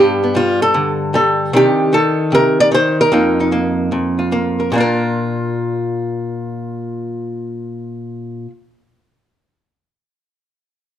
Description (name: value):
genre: solo jazz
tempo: 151 BPM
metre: 4/4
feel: swing 67% on 8ths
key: Bb major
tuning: A4 = 444 Hz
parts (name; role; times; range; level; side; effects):
- archtop guitar, miked and amplified; solo; 0.0-8.5 s; F2 to D5; -14 LUFS; equal; none
room: light reverb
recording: dark, warm production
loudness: -14 LUFS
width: side -10 dB against mid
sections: 0.0-4.7 A section; 4.7-7.9 B section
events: none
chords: 0.0 Gadd9; 1.5 Cmadd9; 3.1 F7sus4; 4.7 Bb